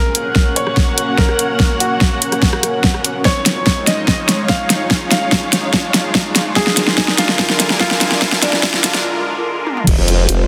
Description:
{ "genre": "heavy wobble dubstep", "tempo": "145 BPM", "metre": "4/4", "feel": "half-time", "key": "unclear", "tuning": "A4 = 440 Hz", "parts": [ { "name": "bright baby grand piano", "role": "melody", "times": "0.0-9.0 s", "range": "D4 to F5", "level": "-24 LUFS", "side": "equal", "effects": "low-pass filter, tape echo" }, { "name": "lush unison pad", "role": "sustained chords", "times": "0.0-10.5 s", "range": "D3 to Db5", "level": "-25 LUFS", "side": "equal", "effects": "chorus, phaser, sidechain pumping" }, { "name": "riser", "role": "sound effects", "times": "2.8-9.0 s", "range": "none", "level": "-30 LUFS", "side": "equal", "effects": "none" }, { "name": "dark studio string section", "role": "texture", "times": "0.0-10.5 s", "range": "Db4 to Ab5", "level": "-26 LUFS", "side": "equal", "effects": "sidechain pumping" }, { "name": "dubstep drum kit", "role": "drums", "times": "0.1-10.4 s", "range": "crash cymbal, hi-hat, rim click, snare drum, toms", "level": "-18 LUFS", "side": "equal", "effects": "overdrive, small room reverb" }, { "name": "electronic kick drum", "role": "drums", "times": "0.4-10.0 s", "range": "none", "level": "-19 LUFS", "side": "equal", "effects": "overdrive, small room reverb" }, { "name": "formant-sweep wobble bass", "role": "bass", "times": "9.9-10.5 s", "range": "F1", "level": "-16 LUFS", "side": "equal", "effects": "chorus, overdrive" } ], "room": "light reverb, digital ambience", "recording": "dense, heavily limited modern master, high-pass filter", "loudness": "-15 LUFS", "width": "mono", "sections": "0.0-9.9 A section", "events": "build-up 0.0-9.9; drum fill 0.0-9.0, 9.7; filter sweep on grand piano 0.0-9.9; filter sweep 0.0-9.9; break 9.0-9.9", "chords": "0.0 Gb; 3.3 Dbadd9; 6.6 Bb7/D; 9.9 Fm" }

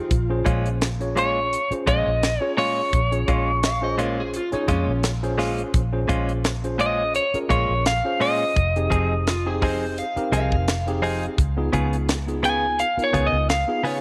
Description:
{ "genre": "straight-eighth soul blues", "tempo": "85 BPM", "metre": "4/4", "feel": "swing 55% on 16ths", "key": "unclear", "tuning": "A4 = 441 Hz", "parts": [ { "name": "electric slide guitar", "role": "second line", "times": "0.0-5.0, 9.3-14.0 s", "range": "Db4 to F5", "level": "-33 LUFS", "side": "equal", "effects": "none" }, { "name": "mellow tine electric piano", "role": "accompaniment", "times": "0.0-14.0 s", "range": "Cb4 to Db5", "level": "-31 LUFS", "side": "equal", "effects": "overdrive" }, { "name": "vintage muted fingered electric bass", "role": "bass", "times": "0.1-13.6 s", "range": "F1 to F2", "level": "-27 LUFS", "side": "equal", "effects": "none" }, { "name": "tight funk drum kit", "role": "drums", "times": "0.1-14.0 s", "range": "hi-hat, kick drum, snare drum", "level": "-28 LUFS", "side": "equal", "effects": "none" }, { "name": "direct-recorded clean electric guitar", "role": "stabs", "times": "0.4-14.0 s", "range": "Bb2 to Ab4", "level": "-30 LUFS", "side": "equal", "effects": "none" }, { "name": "lightly driven lead guitar", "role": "melody", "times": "1.2-13.8 s", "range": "Db5 to Ab5", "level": "-25 LUFS", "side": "equal", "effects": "none" } ], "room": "light reverb, small room ambience", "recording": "none", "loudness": "-22 LUFS", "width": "mono", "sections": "0.0-14.0 A section", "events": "none", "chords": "0.1 Bbm7; 8.6 Fm7; 11.4 Db7" }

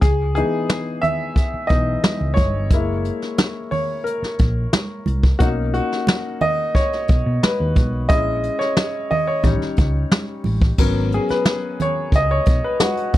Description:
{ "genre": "lush 1970s-style soul", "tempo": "89 BPM", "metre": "4/4", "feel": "straight", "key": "G# minor", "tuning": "A4 = 439 Hz", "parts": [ { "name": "clear concert grand piano", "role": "accompaniment", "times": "0.0-13.2 s", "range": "E3 to E5", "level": "-21 LUFS", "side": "left 1 dB", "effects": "none" }, { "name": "hollow-body short-scale fingered electric bass", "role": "bass", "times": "0.0-13.2 s", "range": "F#1 to B2", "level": "-21 LUFS", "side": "equal", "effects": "none" }, { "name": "vintage brush drum kit", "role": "drums", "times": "0.0-13.2 s", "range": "crash cymbal, hi-hat, kick drum, snare drum", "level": "-18 LUFS", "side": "equal", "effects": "none" }, { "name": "congas", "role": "percussion", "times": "0.0-13.2 s", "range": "none", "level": "-27 LUFS", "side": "right 4 dB", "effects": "none" } ], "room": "little or no reverb", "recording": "dry, close 1970s-style studio recording", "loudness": "-17 LUFS", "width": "side -14 dB against mid", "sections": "0.0-10.8 A section; 10.8-13.2 B section", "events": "grand piano solo 0.0-10.8, 10.8-13.2", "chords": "0.0 C#m9; 2.7 F#9; 5.4 Bmaj9; 8.1 A#m7b5; 9.4 A7#11; 10.8 G#m11" }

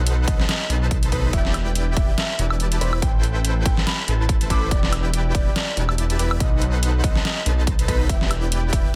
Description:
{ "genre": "future bass", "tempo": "142 BPM", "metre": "4/4", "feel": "swing 55% on 16ths, half-time", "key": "E minor", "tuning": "A4 = 440 Hz", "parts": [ { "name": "dense compressed supersaw", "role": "riff", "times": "0.0-8.9 s", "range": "D#4 to B5", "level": "-31 LUFS", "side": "equal", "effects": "sidechain pumping" }, { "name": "detuned saw bass", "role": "bass", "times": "0.0-8.9 s", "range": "E1 to B1", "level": "-24 LUFS", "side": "equal", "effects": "chorus, sidechain pumping" }, { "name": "dubstep drum kit", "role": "drums", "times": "0.1-8.8 s", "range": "hi-hat, snare drum, woodblock", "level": "-28 LUFS", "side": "equal", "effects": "overdrive" }, { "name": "warm grand piano", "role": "melody", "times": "0.3-8.9 s", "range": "B4 to D6", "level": "-35 LUFS", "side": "equal", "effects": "sidechain pumping, dub echo" }, { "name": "electronic kick drum", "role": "drums", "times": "0.3-8.8 s", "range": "none", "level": "-24 LUFS", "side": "equal", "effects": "overdrive" } ], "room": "little or no reverb", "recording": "dense, heavily limited modern master", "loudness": "-21 LUFS", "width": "mono", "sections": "0.0-9.0 A section", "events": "none", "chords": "0.0 B7b9; 1.3 Em7; 3.0 Am9; 4.7 Em7; 6.4 B7b9; 8.1 Em7" }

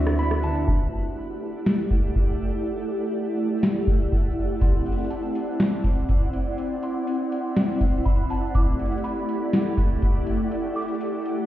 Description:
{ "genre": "hip hop, atmospheric cloud-rap", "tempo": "122 BPM", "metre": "4/4", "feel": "half-time", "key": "E minor", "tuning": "A4 = 440 Hz", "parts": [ { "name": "glassy FM pad", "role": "sustained chords", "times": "0.0-11.5 s", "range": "A3 to F#5", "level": "-27 LUFS", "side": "equal", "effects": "ensemble chorus, built-in reverb, sidechain pumping, low-pass filter" }, { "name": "mellow electric guitar", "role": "arpeggios", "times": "0.0-0.7 s", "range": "D3 to E4", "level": "-32 LUFS", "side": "right 2 dB", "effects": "low-pass filter, ping-pong delay" }, { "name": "soft 808-style bass", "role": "bass", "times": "0.0-0.6 s", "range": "D2", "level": "-23 LUFS", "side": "equal", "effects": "none" }, { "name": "twinkling granular texture", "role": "texture", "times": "0.0-11.5 s", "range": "B3 to F#5", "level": "-34 LUFS", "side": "right 2 dB", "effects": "built-in reverb" }, { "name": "booming analog drum machine", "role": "drums", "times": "0.1-11.4 s", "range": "hi-hat, kick drum, rim click, snare drum", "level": "-21 LUFS", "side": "equal", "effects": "none" }, { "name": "soft synth bell", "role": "melody", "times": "0.2-11.5 s", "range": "A5 to D6", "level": "-36 LUFS", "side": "right 2 dB", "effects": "chorus, low-pass filter, ping-pong delay" } ], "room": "light reverb", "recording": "heard muffled through a wall, stone room reverb, EQ", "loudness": "-22 LUFS", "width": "side -13 dB against mid", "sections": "0.7-11.5 A section", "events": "filter sweep 0.7-11.5", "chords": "0.0 D9; 0.7 Em11; 4.6 D9; 8.5 Em11" }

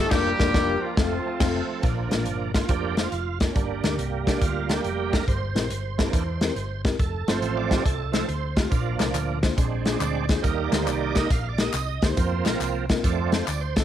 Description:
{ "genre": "uptempo gospel", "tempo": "139 BPM", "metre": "4/4", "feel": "swing 66% on 8ths", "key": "Bb major", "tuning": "A4 = 440 Hz", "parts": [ { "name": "warm horn section", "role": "melody", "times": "0.0-1.8 s", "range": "F3 to A4", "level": "-26 LUFS", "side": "equal", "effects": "cassette tape" }, { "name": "mellow tine electric piano", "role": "accompaniment", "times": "0.0-13.8 s", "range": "G2 to C5", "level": "-30 LUFS", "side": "left 8 dB", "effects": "medium stereo tremolo, cassette tape" }, { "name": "bright tonewheel organ", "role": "sustained chords", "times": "0.0-13.8 s", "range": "E3 to F5", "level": "-28 LUFS", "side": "right 8 dB", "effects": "fast rotary speaker, overdrive, chorus vibrato, cassette tape" }, { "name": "hollow-body short-scale fingered electric bass", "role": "bass", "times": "0.0-13.8 s", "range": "F1 to F2", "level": "-30 LUFS", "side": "equal", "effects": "none" }, { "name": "natural country drum kit", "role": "drums", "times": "0.1-13.8 s", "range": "crash cymbal, hi-hat, kick drum, snare drum", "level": "-24 LUFS", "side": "equal", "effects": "cassette tape" }, { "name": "tambourine and handclaps", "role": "percussion", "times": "8.7-13.8 s", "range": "none", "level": "-36 LUFS", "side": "left 6 dB", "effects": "none" } ], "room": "light reverb, small room ambience", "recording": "home recording on cassette", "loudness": "-22 LUFS", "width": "side -11 dB against mid", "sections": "0.0-1.8 A section; 1.8-13.8 B section", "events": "band accent 0.1-1.8; tonewheel organ solo 1.8-13.8", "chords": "0.1 Bb/F; 1.0 F; 1.8 Bb; 5.3 C7/G; 7.0 F; 8.7 Bb; 9.6 Bb7; 10.4 Eb; 12.2 Fsus4; 13.0 F" }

